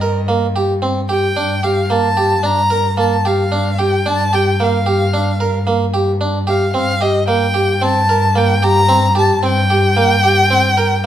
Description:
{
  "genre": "contemporary instrumental, chamber music in an uneven meter",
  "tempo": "112 BPM",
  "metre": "5/4",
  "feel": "straight",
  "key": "G minor",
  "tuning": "A4 = 440 Hz",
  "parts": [
    { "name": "warm violin", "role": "melody", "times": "0.0-11.1 s", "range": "Eb5 to Bb5", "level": "-17 LUFS", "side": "left 1 dB", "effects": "none" },
    { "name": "harpsichord", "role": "arpeggios", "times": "0.0-10.9 s", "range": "Bb3 to Bb4", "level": "-16 LUFS", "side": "right 2 dB", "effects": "none" },
    { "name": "warm cello", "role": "bass", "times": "0.0-11.1 s", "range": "G2", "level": "-18 LUFS", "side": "equal", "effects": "none" }
  ],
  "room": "moderate recital hall reverb, RT60 1.7 s",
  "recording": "minimal, uncompressed stereo recording",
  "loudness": "-12 LUFS",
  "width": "side -11 dB against mid",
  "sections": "0.0-11.1 A section",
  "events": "none",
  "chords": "0.0 Cm7/G; 1.4 Gm7; 6.7 C5/G",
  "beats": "0.28 0.82 | 1.36 1.90 2.44 2.98 3.51 | 4.05 4.59 5.13 5.67 6.20 | 6.74 7.28 7.82 8.35 8.89 | 9.43 9.97 10.50 11.04"
}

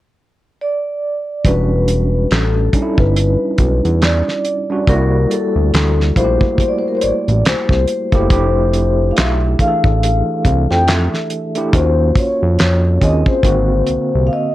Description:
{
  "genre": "R&B, neo-soul",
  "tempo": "70 BPM",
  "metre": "4/4",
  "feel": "swing 58% on 16ths",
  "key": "unclear",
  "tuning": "A4 = 440 Hz",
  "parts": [
    { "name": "vibraphone with soft mallets", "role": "melody", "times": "0.6-14.5 s", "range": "A4 to G5", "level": "-19 LUFS", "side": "left 3 dB", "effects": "slapback echo, plate reverb" },
    { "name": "damped 70s drum kit", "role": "drums", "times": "1.4-14.1 s", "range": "handclaps, hi-hat, kick drum, snare drum", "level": "-16 LUFS", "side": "equal", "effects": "none" },
    { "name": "overdriven tine electric piano", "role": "accompaniment", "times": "1.5-14.5 s", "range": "D3 to A4", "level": "-20 LUFS", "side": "right 2 dB", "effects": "fast tremolo, plate reverb" },
    { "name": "fat analog bass", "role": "bass", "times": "1.5-14.3 s", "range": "E1 to F2", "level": "-15 LUFS", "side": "equal", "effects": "none" }
  ],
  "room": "light reverb",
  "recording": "worn, warbling old tape, cassette tape, warbly pitch drift",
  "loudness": "-13 LUFS",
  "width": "side -15 dB against mid",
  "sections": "0.0-1.4 A section; 1.4-14.5 B section",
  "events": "drums muted 14.3",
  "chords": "0.0 N.C.; 1.4 Em7; 4.9 C13; 8.3 Fmaj9; 11.7 D#m7; 13.4 G#7",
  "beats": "0.59 | 1.44 2.30 3.16 4.01 | 4.87 5.73 6.59 7.44 | 8.30 9.16 10.01 10.87 | 11.73 12.59 13.44 14.30"
}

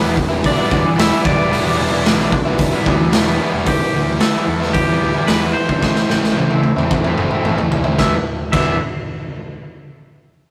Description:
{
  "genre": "indie rock",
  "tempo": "111 BPM",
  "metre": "4/4",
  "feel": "straight",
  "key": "E minor",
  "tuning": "A4 = 440 Hz",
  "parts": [
    { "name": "twangy electric guitar", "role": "melody", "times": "0.0-8.8 s", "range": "G4 to E5", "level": "-25 LUFS", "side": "equal", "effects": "spring reverb" },
    { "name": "clear trumpet", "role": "second line", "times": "0.0-3.1 s", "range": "B3 to E4", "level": "-30 LUFS", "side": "equal", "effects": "none" },
    { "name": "biting overdriven guitar", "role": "riff", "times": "0.0-8.8 s", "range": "A2 to E4", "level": "-22 LUFS", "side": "equal", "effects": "none" },
    { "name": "overdriven semi-hollow guitar", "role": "riff", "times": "0.0-8.8 s", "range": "E3 to E4", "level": "-25 LUFS", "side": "equal", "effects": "none" },
    { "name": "fuzz picked electric bass", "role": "bass", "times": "0.0-8.8 s", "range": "E1 to E2", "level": "-25 LUFS", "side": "equal", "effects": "overdrive" },
    { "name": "raw garage drum kit", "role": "drums", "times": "0.2-8.7 s", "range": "crash cymbal, hi-hat, kick drum, snare drum, toms", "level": "-20 LUFS", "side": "equal", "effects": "none" }
  ],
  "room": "moderate studio reverb, RT60 0.6 s",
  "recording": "rough rehearsal-room recording, tube saturation",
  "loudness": "-16 LUFS",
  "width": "mono",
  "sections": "0.0-3.7 A section; 3.7-8.0 B section; 8.0-10.1 C section",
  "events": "drum fill 5.8-8.0",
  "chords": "0.0 Em; 1.3 Em7; 3.7 Em; 5.8 Am; 8.0 Em",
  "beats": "0.45 0.99 | 1.52 2.06 2.60 3.13 | 3.67 4.21 4.75 5.29 | 5.83 6.37 6.91 7.45 | 7.99 8.53"
}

